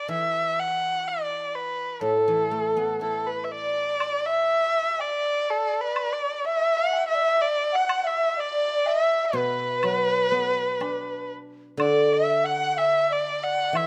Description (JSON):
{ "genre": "chinese traditional, Chinese chamber ensemble", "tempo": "62 BPM", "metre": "2/4", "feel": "rubato", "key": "unclear", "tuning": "A4 = 440 Hz", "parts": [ { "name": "rich erhu", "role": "melody", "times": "0.0-13.9 s", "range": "A4 to F#5", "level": "-27 LUFS", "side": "equal", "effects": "none" }, { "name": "guzheng", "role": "accompaniment", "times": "0.1-5.0, 9.3-13.9 s", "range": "A2 to E4", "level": "-29 LUFS", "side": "equal", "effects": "none" }, { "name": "mellow hollow dizi", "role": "second line", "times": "3.0-13.9 s", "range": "A4 to F#5", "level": "-28 LUFS", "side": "equal", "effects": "none" }, { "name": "woodblock", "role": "percussion", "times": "4.0-13.9 s", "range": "none", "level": "-34 LUFS", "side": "equal", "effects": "none" } ], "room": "light reverb", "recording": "close, detailed microphones", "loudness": "-24 LUFS", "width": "mono", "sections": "0.0-4.0 A section; 4.0-13.9 B section", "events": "none", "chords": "none" }